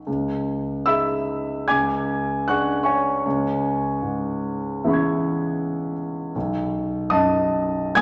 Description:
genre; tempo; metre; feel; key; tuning
classical, impressionist solo piano; 67-81 BPM; 4/4; rubato; C# minor; A4 = 440 Hz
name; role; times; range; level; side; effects
warm concert grand piano; solo; 0.0-8.0 s; B1 to G#6; -23 LUFS; equal; none
room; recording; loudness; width
wet recital hall reverb, RT60 1.6 s; none; -23 LUFS; mono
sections
0.1-8.0 A section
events
none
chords
0.1 C#madd9; 1.7 Dmaj7#11/C#; 3.3 C#m7; 6.4 B7

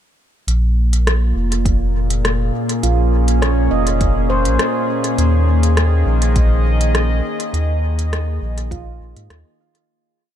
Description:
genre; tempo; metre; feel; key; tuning
ambient dub; 102 BPM; 4/4; straight; Bb minor; A4 = 440 Hz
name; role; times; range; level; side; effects
warbly tape-like pad; sustained chords; 0.7-9.9 s; Bb2 to Eb5; -21 LUFS; left 1 dB; chorus, built-in reverb
warm sub bass; bass; 0.5-9.4 s; F1 to Ab2; -16 LUFS; equal; tube saturation
organic electronic drum kit; drums; 0.5-9.9 s; hi-hat, rim click; -24 LUFS; left 1 dB; dub echo
electronic kick drum; drums; 1.7-8.8 s; none; -19 LUFS; equal; none
handpan; arpeggios; 2.8-10.4 s; F4 to Eb5; -24 LUFS; right 2 dB; dub echo
room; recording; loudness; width
light reverb, digital ambience; none; -14 LUFS; side -10 dB against mid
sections
0.5-9.9 groove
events
fade-out 6.8-9.9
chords
0.5 Bbm7; 5.2 Ebsus4

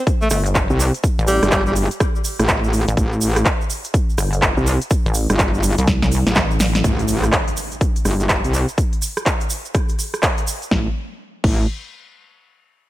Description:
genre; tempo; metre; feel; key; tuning
bass house; 124 BPM; 4/4; swing 62% on 16ths; unclear; A4 = 438 Hz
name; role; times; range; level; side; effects
clear alto saxophone; melody; 0.0-1.7 s; G3 to A3; -22 LUFS; equal; ping-pong delay
big-room dance drum kit; drums; 0.1-11.6 s; crash cymbal, handclaps, hi-hat, rim click, snare drum; -22 LUFS; equal; overdrive
electronic kick drum; drums; 0.1-11.6 s; none; -20 LUFS; equal; overdrive
tube shaker; percussion; 0.1-10.7 s; none; -29 LUFS; right 5 dB; none
pulsing pluck wobble bass; bass; 0.3-6.8 s; G1 to C2; -19 LUFS; equal; chorus, sidechain pumping
metallic wobble bass; bass; 0.7-11.7 s; G1 to C2; -18 LUFS; equal; distortion, chorus, tube saturation, sidechain pumping
impact; sound effects; 6.8-8.8 s; none; -29 LUFS; equal; none
room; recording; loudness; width
digital ambience; none; -16 LUFS; side -16 dB against mid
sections
0.0-6.8 A section; 6.8-10.7 B section; 10.7-12.6 C section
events
drop 0.0-6.8; drum fill 5.9-6.8; impact 6.8-8.8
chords
0.0 Gsus24; 10.7 N.C.

